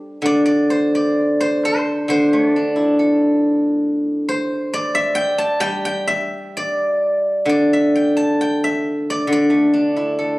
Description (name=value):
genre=chinese traditional, Chinese solo plucked strings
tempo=63-70 BPM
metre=2/4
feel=rubato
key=unclear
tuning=A4 = 440 Hz
part: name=steel-string zither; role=solo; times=0.0-10.4 s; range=D3 to A5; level=-16 LUFS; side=equal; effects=none
room=light reverb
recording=recorded on a phone in the room, club ambience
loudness=-15 LUFS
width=side -20 dB against mid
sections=0.2-10.4 A section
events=none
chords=none